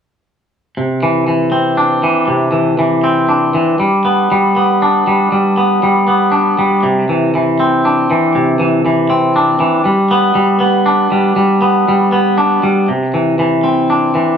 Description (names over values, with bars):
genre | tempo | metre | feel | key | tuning
rock | 119 BPM | 3/4 | straight | unclear | A4 = 439 Hz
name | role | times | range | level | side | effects
twangy electric guitar | arpeggios | 0.8-14.4 s | C3 to D4 | -10 LUFS | equal | none
room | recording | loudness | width
wet studio reverb, RT60 0.9 s | band playing live in one room | -10 LUFS | side -7 dB against mid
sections
0.8-12.9 A section; 12.9-14.4 A section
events
none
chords
0.8 Cadd9; 3.8 G; 6.8 Cadd9; 9.9 G; 12.9 Cadd9